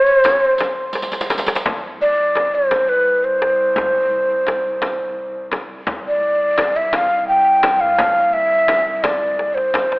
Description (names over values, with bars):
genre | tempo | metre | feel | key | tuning
Persian modal ensemble | 57 BPM (dotted quarters) | 6/8 | straight | C dastgah mahur | A4 = 440 Hz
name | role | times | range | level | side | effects
breathy mellow ney | melody | 0.0-10.0 s | B4 to G5 | -15 LUFS | equal | none
santur | second line | 0.0-2.2 s | C5 | -29 LUFS | right 1 dB | none
riq | percussion | 0.1-1.6 s | none | -27 LUFS | right 1 dB | none
tombak | percussion | 0.1-10.0 s | none | -26 LUFS | equal | none
frame drum | percussion | 0.2-9.9 s | none | -24 LUFS | left 1 dB | none
clear double bass | drone | 1.7-10.0 s | C2 | -34 LUFS | right 1 dB | none
room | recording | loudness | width
moderate concert hall reverb, RT60 1.9 s | telephone sound | -15 LUFS | side -24 dB against mid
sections
0.0-1.6 A section; 1.6-10.0 B section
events
drum fill 0.9-1.6, 9.4-10.0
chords
none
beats
0.59 | 1.65 2.70 | 3.76 4.81 | 5.87 6.92 | 7.98 9.03